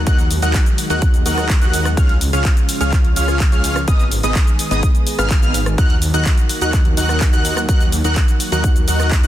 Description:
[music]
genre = EDM, festival progressive house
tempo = 126 BPM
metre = 4/4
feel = straight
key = Eb minor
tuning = A4 = 440 Hz
[part]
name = lush unison pad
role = sustained chords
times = 0.0-9.3 s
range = Db3 to Ab4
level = -26 LUFS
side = equal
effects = chorus, sidechain pumping
[part]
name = wide detuned saw bass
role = bass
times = 0.0-9.3 s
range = Ab1 to Eb2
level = -20 LUFS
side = equal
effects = chorus, sidechain pumping
[part]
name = downlifter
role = sound effects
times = 0.0-2.0 s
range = none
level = -39 LUFS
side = left 2 dB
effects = none
[part]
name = wide unison lead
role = arpeggios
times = 0.1-9.3 s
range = Eb6 to Gb6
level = -24 LUFS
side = equal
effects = sidechain pumping, digital delay
[part]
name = dense compressed supersaw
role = riff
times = 0.1-9.3 s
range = Cb4 to Gb5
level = -24 LUFS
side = equal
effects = vintage 12-bit sampler grit, sidechain pumping, digital delay
[part]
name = big-room dance drum kit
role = drums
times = 0.1-9.3 s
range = handclaps, hi-hat, rim click, shaker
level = -24 LUFS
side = left 1 dB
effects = none
[part]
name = electronic kick drum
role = drums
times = 0.1-9.2 s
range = none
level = -15 LUFS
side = equal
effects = none
[sound]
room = little or no reverb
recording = dense, heavily limited modern master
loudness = -13 LUFS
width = side -13 dB against mid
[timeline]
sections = 0.0-9.3 A section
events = none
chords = 0.0 Ebm; 2.0 Db; 3.9 Abm; 5.8 Ebm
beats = | 0.07 0.55 1.02 1.50 | 1.97 2.45 2.93 3.40 | 3.88 4.35 4.83 5.31 | 5.78 6.26 6.74 7.21 | 7.69 8.16 8.64 9.12

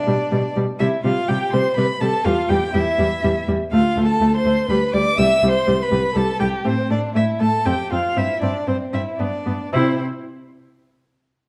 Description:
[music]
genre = quick classical-period movement for string quartet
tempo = 110-124 BPM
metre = 3/4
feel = straight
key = C major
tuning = A4 = 440 Hz
[part]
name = rich violin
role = melody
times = 0.0-10.0 s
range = C5 to E6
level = -28 LUFS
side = equal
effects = none
[part]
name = dark violin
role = second line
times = 0.0-10.0 s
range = C4 to E5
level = -25 LUFS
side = equal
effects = none
[part]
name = warm viola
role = accompaniment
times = 0.1-10.0 s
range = G3 to E4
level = -24 LUFS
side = equal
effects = none
[part]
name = rich cello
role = bass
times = 0.1-10.0 s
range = C2 to C3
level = -26 LUFS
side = equal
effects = none
[sound]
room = wet recital hall reverb, RT60 1.4 s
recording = dark, warm production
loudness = -19 LUFS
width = mono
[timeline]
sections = 0.0-9.7 A section; 9.7-11.3 B section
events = slowing down 5.9-9.7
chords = 0.0 G/B; 0.8 C5; 2.3 Em; 3.7 D5; 4.7 G; 5.2 C5; 6.7 Amadd11; 7.7 Fsus2; 8.2 Gsus4; 9.2 G; 9.7 C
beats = 0.31 | 0.80 1.28 1.77 | 2.25 2.74 3.23 | 3.72 4.20 4.69 | 5.18 5.67 6.15 | 6.65 7.15 7.66 | 8.16 8.67 9.19 | 9.73

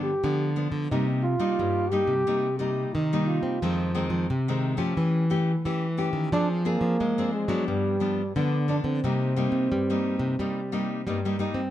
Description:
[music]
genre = samba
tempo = 89 BPM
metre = 4/4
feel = straight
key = C minor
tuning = A4 = 440 Hz
[part]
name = dark trombone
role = melody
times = 0.0-11.4 s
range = G3 to G4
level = -28 LUFS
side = right 1 dB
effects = none
[part]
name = nylon-string guitar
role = accompaniment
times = 0.0-11.7 s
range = F2 to Ab4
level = -29 LUFS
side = left 3 dB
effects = none
[part]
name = nylon-string guitar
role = bass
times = 0.0-11.7 s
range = C3 to C4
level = -27 LUFS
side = equal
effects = none
[sound]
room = light reverb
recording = dark, warm production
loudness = -23 LUFS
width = side -12 dB against mid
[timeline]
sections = 0.0-11.7 A section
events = none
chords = 0.0 G7; 0.9 Cm7; 3.6 Fm7; 5.0 A7/E; 6.3 Dm7b5/F; 7.7 G7; 9.0 Cm7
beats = 0.24 | 0.92 1.59 2.27 2.95 | 3.62 4.30 4.98 5.65 | 6.33 7.01 7.68 8.36 | 9.04 9.71 10.39 11.06

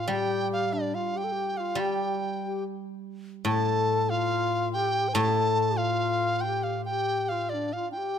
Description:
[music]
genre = chinese traditional, Chinese chamber ensemble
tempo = 71 BPM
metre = 4/4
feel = straight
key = unclear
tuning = A4 = 440 Hz
[part]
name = large dizi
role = melody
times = 0.0-8.2 s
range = D5 to A5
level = -28 LUFS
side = right 2 dB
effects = none
[part]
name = low xiao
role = second line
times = 0.0-8.2 s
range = D4 to C5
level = -30 LUFS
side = left 7 dB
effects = none
[part]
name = guzheng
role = accompaniment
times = 0.0-7.7 s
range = A2 to G3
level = -31 LUFS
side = equal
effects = none
[sound]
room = moderate scoring stage reverb, RT60 1.8 s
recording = close, detailed microphones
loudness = -25 LUFS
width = side -8 dB against mid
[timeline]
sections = 0.0-8.2 A section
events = none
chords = none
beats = | 0.09 0.94 1.79 2.63 | 3.47 4.31 5.16 6.02 | 6.88 7.74

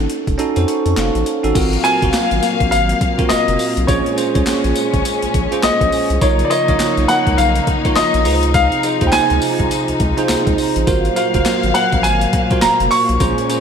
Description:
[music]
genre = R&B, new jack swing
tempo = 103 BPM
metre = 4/4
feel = swing 61% on 16ths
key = unclear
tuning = A4 = 441 Hz
[part]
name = bell-like tine electric piano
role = accompaniment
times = 0.0-13.6 s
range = C4 to Db6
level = -19 LUFS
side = right 4 dB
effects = lush chorus
[part]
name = round analog bass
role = bass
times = 0.0-13.3 s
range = F1 to F2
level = -19 LUFS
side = left 1 dB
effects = none
[part]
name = boom bap sampler-style drum kit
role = drums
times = 0.1-13.6 s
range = crash cymbal, handclaps, hi-hat, kick drum, snare drum, tambourine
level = -20 LUFS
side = left 1 dB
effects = overdrive, gated reverb
[part]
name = group handclap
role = percussion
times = 1.0-1.1, 11.5-12.8 s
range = none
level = -37 LUFS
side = left 6 dB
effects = none
[part]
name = warm studio string section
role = sustained chords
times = 1.6-13.6 s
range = Bb2 to F5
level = -21 LUFS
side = left 3 dB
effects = none
[part]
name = clear baby grand piano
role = melody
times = 1.8-13.5 s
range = Db5 to Db6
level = -18 LUFS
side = left 1 dB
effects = lush chorus
[sound]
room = moderate plate reverb, RT60 2.9 s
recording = bright 1980s-style digital production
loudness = -13 LUFS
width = side -7 dB against mid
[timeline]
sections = 0.0-1.6 A section; 1.6-13.6 B section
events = kick muted 0.4-1.6; tine electric piano fill 0.4-1.6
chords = 0.0 F7b9b13; 1.6 Ab13; 3.9 Bbm9; 6.2 Bmaj9#11; 8.3 Dbmaj9; 10.9 Ab13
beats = 0.39 0.97 | 1.55 2.14 2.72 3.30 | 3.88 4.47 5.05 5.63 | 6.21 6.80 7.38 7.96 | 8.54 9.13 9.71 10.29 | 10.88 11.46 12.04 12.62 | 13.21

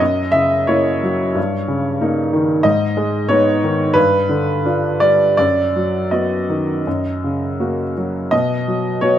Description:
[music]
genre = classical, romantic character piece for solo piano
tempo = 79-97 BPM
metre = 4/4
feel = rubato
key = unclear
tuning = A4 = 440 Hz
[part]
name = warm upright piano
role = solo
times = 0.0-9.2 s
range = F#2 to E5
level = -15 LUFS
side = equal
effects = none
[sound]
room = light reverb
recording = close, detailed microphones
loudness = -15 LUFS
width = side -10 dB against mid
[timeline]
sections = 0.0-9.2 A section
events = none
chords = 0.0 F#7; 1.4 D#7/G; 2.6 G#m; 4.0 G7; 5.4 B/F#; 6.9 F#; 8.3 B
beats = | 0.00 0.68 1.37 2.01 | 2.64 3.30 3.96 4.64 | 5.37 6.12 6.86 7.59 | 8.32 9.01

